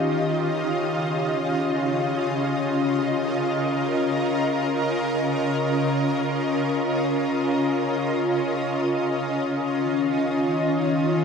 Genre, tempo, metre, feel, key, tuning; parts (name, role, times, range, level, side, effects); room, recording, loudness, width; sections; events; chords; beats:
ambient; free time; Db lydian; A4 = 444 Hz
shimmering ambient pad; solo; 0.0-11.2 s; Db3 to Eb5; -21 LUFS; left 1 dB; chorus, built-in reverb, ping-pong delay
wet cathedral reverb, RT60 5.7 s; -21 LUFS; side -6 dB against mid
0.0-11.2 A section
0.4 Db6; 9.0 Eb7(no3)
free time